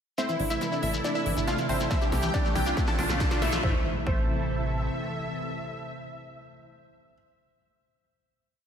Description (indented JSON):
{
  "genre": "uplifting trance",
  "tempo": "139 BPM",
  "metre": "4/4",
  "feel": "straight",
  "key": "A minor",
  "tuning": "A4 = 440 Hz",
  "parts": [
    { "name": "supersaw stab", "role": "melody", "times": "0.2-7.1 s", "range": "C4 to A5", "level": "-33 LUFS", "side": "equal", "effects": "cassette tape, sidechain pumping, ping-pong delay" },
    { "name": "analog pluck", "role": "second line", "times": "0.2-7.1 s", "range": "E4 to A5", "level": "-39 LUFS", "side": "left 1 dB", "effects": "none" },
    { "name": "warm grand piano", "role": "second line", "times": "0.2-7.1 s", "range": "D4 to E5", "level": "-37 LUFS", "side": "right 1 dB", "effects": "analog delay" },
    { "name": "analog string pad", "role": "sustained chords", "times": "0.2-6.7 s", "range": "B2 to A4", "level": "-34 LUFS", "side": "equal", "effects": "ensemble chorus, sidechain pumping" },
    { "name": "liquid acid bass", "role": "arpeggios", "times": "0.2-4.2 s", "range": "E3 to D4", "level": "-34 LUFS", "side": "left 1 dB", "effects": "lush chorus, sidechain pumping, ping-pong delay" },
    { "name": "big-room dance drum kit", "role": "drums", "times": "0.2-3.6 s", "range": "hi-hat, snare drum", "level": "-37 LUFS", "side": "equal", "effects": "overdrive, high-pass filter on snare, sidechain pumping on hats, high-pass filter on hats" },
    { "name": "shekere", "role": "percussion", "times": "0.2-3.6 s", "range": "none", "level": "-40 LUFS", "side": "left 3 dB", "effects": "none" },
    { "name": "riser and impact", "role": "sound effects", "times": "2.4-6.7 s", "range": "none", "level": "-38 LUFS", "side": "equal", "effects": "none" },
    { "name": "plucky analog bass", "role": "bass", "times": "0.4-4.9 s", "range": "A1 to C2", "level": "-31 LUFS", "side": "equal", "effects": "sidechain pumping" },
    { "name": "electronic kick drum", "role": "drums", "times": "1.9-4.2 s", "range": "none", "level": "-28 LUFS", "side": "equal", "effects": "overdrive" }
  ],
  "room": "wet lush hall reverb, RT60 1.8 s, digital ambience",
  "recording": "dreamy mix soaked in reverb",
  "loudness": "-25 LUFS",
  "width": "side -8 dB against mid",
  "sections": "0.2-3.6 build; 3.6-7.1 final chord",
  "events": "build-up 0.2-3.6; drum fill 0.2-3.6; filter sweep on acid bass 0.2-3.6",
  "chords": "0.2 Am; 1.9 C; 2.8 Bdim; 3.6 Am"
}